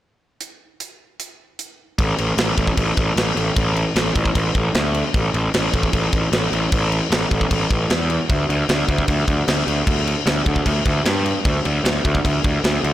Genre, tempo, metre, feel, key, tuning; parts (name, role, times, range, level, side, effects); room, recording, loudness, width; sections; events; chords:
heavy metal; 152 BPM; 4/4; straight; A4 = 439 Hz
tight metal drum kit; drums; 0.4-12.9 s; crash cymbal, hi-hat, kick drum, snare drum; -20 LUFS; equal
fuzz picked electric bass; bass; 2.0-12.9 s; A1 to G2; -19 LUFS; equal; overdrive
little or no reverb; blown-out, overdriven recording, overdrive; -17 LUFS; side -13 dB against mid
0.4-2.0 A section; 2.0-12.9 B section